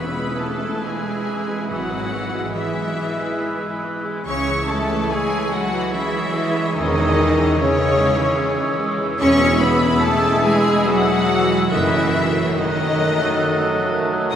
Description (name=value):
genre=classical, slow romantic movement for symphony orchestra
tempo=66-75 BPM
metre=3/4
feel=rubato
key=unclear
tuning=A4 = 439 Hz
part: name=warm studio violin section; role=melody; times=0.0-14.4 s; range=C#5 to D#6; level=-25 LUFS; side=left 3 dB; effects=none
part: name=clear oboe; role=second line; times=0.0-14.4 s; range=B4 to E5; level=-28 LUFS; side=right 1 dB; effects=none
part: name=clear symphonic violin section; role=second line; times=0.0-14.4 s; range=C#4 to D#5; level=-29 LUFS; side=left 2 dB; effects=none
part: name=mellow clarinet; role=second line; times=0.0-14.4 s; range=G#4 to A4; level=-28 LUFS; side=equal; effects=none
part: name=mellow hollow silver concert flute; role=second line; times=0.0-14.4 s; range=E6 to F#6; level=-29 LUFS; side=equal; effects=none
part: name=rich symphonic viola section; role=accompaniment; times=0.0-14.4 s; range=C#3 to E4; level=-27 LUFS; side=right 1 dB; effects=none
part: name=bright trombone section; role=sustained chords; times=0.0-14.4 s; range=E3 to A3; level=-28 LUFS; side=right 2 dB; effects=none
part: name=dark French horn section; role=sustained chords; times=0.0-14.4 s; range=C#3 to D#4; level=-25 LUFS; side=left 1 dB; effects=none
part: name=concert harp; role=arpeggios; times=0.0-14.4 s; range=E2 to B4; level=-32 LUFS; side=left 2 dB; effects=none
part: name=rich symphonic cello section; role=bass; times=0.0-14.4 s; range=C#3 to C#4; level=-25 LUFS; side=right 1 dB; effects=none
part: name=dark tuba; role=bass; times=1.7-14.4 s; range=E1 to C#2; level=-30 LUFS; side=right 2 dB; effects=none
part: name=rich symphonic double bass section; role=bass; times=1.7-14.4 s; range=F#1 to E2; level=-30 LUFS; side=right 3 dB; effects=none
room=wet cathedral reverb, RT60 4.9 s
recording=recorded in a church or concert hall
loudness=-17 LUFS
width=side -9 dB against mid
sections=0.0-14.4 A section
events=none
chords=0.0 E; 1.7 E/G#; 4.3 C#m; 6.8 C#m/E; 9.2 E; 11.7 D#dim/F#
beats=0.84 | 1.69 2.54 3.40 | 4.26 5.12 5.95 | 6.76 7.59 8.40 | 9.21 10.04 10.88 | 11.71 12.56 13.43 | 14.33